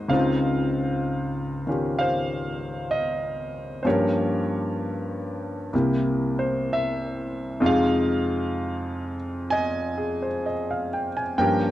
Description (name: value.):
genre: jazz ballad.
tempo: 64 BPM.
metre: 4/4.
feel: swing 67% on 8ths.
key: F minor.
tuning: A4 = 444 Hz.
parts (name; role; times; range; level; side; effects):
clear baby grand piano; solo; 0.0-11.7 s; C2 to Ab5; -23 LUFS; equal; none.
room: small room reverb.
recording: dry, close 1970s-style studio recording.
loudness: -23 LUFS.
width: side -14 dB against mid.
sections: 0.0-11.7 A section.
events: none.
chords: 0.1 Dbmaj9; 3.9 Gm7b5; 5.7 C7; 7.6 Fm7.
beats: | 0.10 1.04 1.98 2.92 | 3.85 4.79 5.73 6.66 | 7.60 8.54 9.48 10.42 | 11.36.